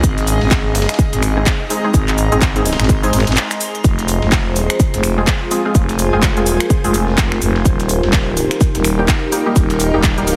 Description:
bass house; 126 BPM; 4/4; swing 59% on 16ths; F minor; A4 = 442 Hz
orchestra-hit-like synth stab; stabs; 0.0-10.2 s; G3 to Ab4; -23 LUFS; equal; built-in reverb, sidechain pumping, delay
growling FM bass; bass; 0.0-10.4 s; Eb1 to Ab1; -20 LUFS; equal; tube saturation, sidechain pumping
dusty soul sampler-style drum kit; drums; 0.0-10.4 s; hi-hat, shaker, snare drum; -31 LUFS; equal
electronic kick drum; drums; 0.0-10.1 s; -17 LUFS; equal; studio reverb
house drum kit; drums; 0.0-10.4 s; finger snaps, handclaps, hi-hat; -24 LUFS; equal; studio reverb
granular cloud pad; texture; 0.0-10.4 s; Eb4 to C6; -26 LUFS; equal; built-in reverb, sidechain pumping
dark analog pad; sustained chords; 3.8-10.4 s; Eb4 to C5; -24 LUFS; equal; chorus, sidechain pumping
light reverb; heavily compressed radio sound, multiband compression; -15 LUFS; mono
0.0-10.4 A section
break 3.4-3.8
0.0 Ab; 3.8 Fm; 7.7 Eb

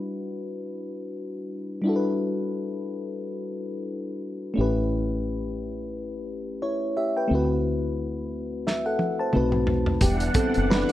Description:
R&B, neo-soul; 88 BPM; 4/4; swing 57% on 16ths; E minor; A4 = 440 Hz
mellow FM electric piano; accompaniment; 0.0-10.9 s; G3 to A5; -26 LUFS; left 1 dB; chorus
deep dub fingered electric bass; bass; 4.6-10.8 s; E1 to D2; -28 LUFS; equal
warm soul drum kit; drums; 8.7-10.9 s; hi-hat, kick drum, snare drum, toms; -25 LUFS; equal
string machine, full ensemble; sustained chords; 10.0-10.9 s; E3 to F#5; -28 LUFS; right 2 dB; phaser, ensemble chorus
moderate studio reverb, RT60 0.7 s; -24 LUFS; side -14 dB against mid
0.0-10.0 A section
drum fill 8.6-10.0
0.0 Em9; 4.6 A9; 7.3 D13; 9.3 B7b9; 10.0 Em9

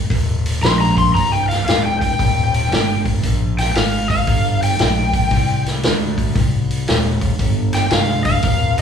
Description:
blues rock power trio and southern rock; 115 BPM; 4/4; swing 66% on 8ths; C minor; A4 = 440 Hz
fuzz fingered electric bass; bass; 0.1-8.8 s; C1 to D2; -20 LUFS; equal; overdrive
vintage drum kit; drums; 0.1-8.8 s; hi-hat, kick drum, snare drum; -18 LUFS; equal
overdriven slide guitar; melody; 0.6-8.8 s; F5 to C6; -19 LUFS; left 3 dB
light reverb; band playing live in one room, small room reverb; -14 LUFS; side -7 dB against mid
0.0-8.8 A section
electric slide guitar solo 0.0-8.8
0.0 Cm

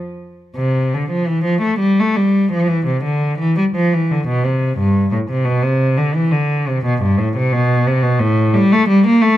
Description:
classical, baroque-style suite movement for unaccompanied cello; 87 BPM; 3/4; rubato; C major; A4 = 440 Hz
rich cello; solo; 0.6-9.4 s; G2 to Bb3; -14 LUFS; equal
light reverb; close, detailed microphones; -14 LUFS; side -13 dB against mid
0.6-9.4 A section

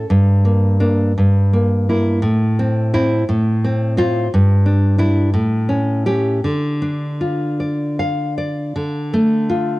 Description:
romantic piece for solo classical guitar; 50-58 BPM; 2/4; rubato; D minor; A4 = 443 Hz
nylon-string guitar; solo; 0.0-9.8 s; G2 to F5; -15 LUFS; equal; cassette tape
studio reverb; home recording on cassette; -15 LUFS; side -19 dB against mid
0.0-8.8 A section; 8.8-9.8 A section
0.1 Gm; 1.1 Edim/G; 2.2 Am; 3.2 F/A; 4.3 Em7/G; 5.3 A7; 6.4 Dm

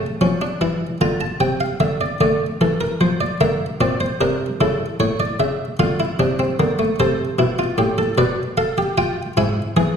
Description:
classical, baroque-style 3-part fugue for harpsichord; 50 BPM (dotted quarters); 6/8; straight; D minor; A4 = 442 Hz
buff-stop harpsichord; solo; 0.0-10.0 s; G#2 to Bb5; -17 LUFS; equal
wet recital hall reverb, RT60 1.4 s; recorded in a church or concert hall; -17 LUFS; side -7 dB against mid
0.0-2.2 A section; 2.2-10.0 B section
0.0 A; 1.0 Dm; 3.4 Bbadd9; 4.6 A; 5.8 Dm; 7.0 Am; 8.2 Bm7b5; 9.4 E/G#

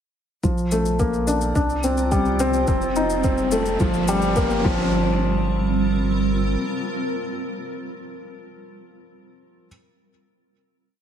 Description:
piano and strings electronica; 107 BPM; 4/4; straight; G minor; A4 = 441 Hz
granular cloud pad; sustained chords; 1.9-7.9 s; G3 to Bb5; -26 LUFS; right 1 dB; built-in reverb, sidechain pumping
felt-muted upright piano; riff; 0.4-9.7 s; F3 to Eb4; -22 LUFS; equal; ping-pong delay
round analog bass; bass; 0.4-6.6 s; F1 to C2; -26 LUFS; equal; sidechain pumping
electronic kick drum; drums; 0.4-4.8 s; -24 LUFS; equal; small room reverb
shaker; drums; 0.4-4.6 s; -35 LUFS; left 6 dB; overdrive, small room reverb
riser; sound effects; 2.3-4.9 s; -32 LUFS; equal
moderate echo chamber reverb, RT60 1.3 s; -19 LUFS; side -9 dB against mid
0.4-4.9 build; 4.9-7.2 final chord
build-up 0.4-4.9; filter sweep on ambient pad 0.4-4.9; riser 2.3-4.9
0.4 Bbmaj7; 1.6 Cmadd9; 2.7 F7; 3.8 Gm7; 4.6 G7sus4; 4.9 Gm7

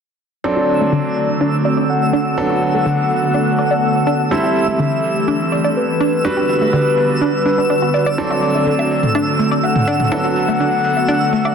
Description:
progressive house; 124 BPM; 4/4; straight; D mixolydian; A4 = 439 Hz
soft octave-layered synth lead; melody; 0.4-11.5 s; B4 to F#5; -19 LUFS; left 3 dB; chorus, digital delay
airy breathy pad; sustained chords; 0.4-11.5 s; D3 to B4; -20 LUFS; equal; chorus
analog pluck; arpeggios; 0.4-11.5 s; D3 to D5; -20 LUFS; right 1 dB; chorus, phaser, digital delay
bright grand piano; stabs; 0.4-11.5 s; F#3 to B4; -21 LUFS; right 3 dB; digital delay
twinkling granular texture; texture; 0.8-11.5 s; E6; -25 LUFS; right 1 dB; built-in reverb
electronic hi-hat; drums; 0.7-11.4 s; -40 LUFS; equal
electronic congas, bongos and toms; percussion; 8.2-11.5 s; -23 LUFS; equal
moderate lush hall reverb, RT60 2.0 s; dense, heavily limited modern master; -14 LUFS; side -6 dB against mid
0.4-11.5 A section
filter sweep on synth arpeggio sound 0.4-11.5; filter sweep on analog synth pad 0.4-11.5
0.4 D7; 2.4 Bm7; 4.3 Am7; 6.2 Gmaj7; 8.2 D7; 10.1 Bm7

